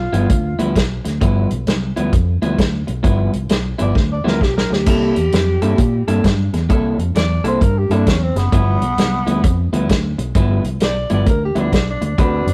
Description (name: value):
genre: electric blues shuffle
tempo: 131 BPM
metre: 4/4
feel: swing 64% on 8ths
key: G mixolydian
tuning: A4 = 440 Hz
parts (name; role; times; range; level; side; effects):
- growling tenor saxophone; melody; 0.0-0.7, 3.8-12.5 s; B3 to D5; -24 LUFS; equal; none
- fingered electric bass; bass; 0.0-12.5 s; F#1 to Bb2; -21 LUFS; equal; none
- electric guitar through a small old amp; riff; 0.1-12.5 s; G2 to B4; -24 LUFS; equal; none
- warm soul drum kit; drums; 0.1-12.5 s; crash cymbal, hi-hat, kick drum, snare drum; -20 LUFS; equal; none
room: light reverb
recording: rough rehearsal-room recording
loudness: -17 LUFS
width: mono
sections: 0.0-12.5 A section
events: drum fill 4.0-4.9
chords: 0.0 G6; 4.9 C6; 8.5 G6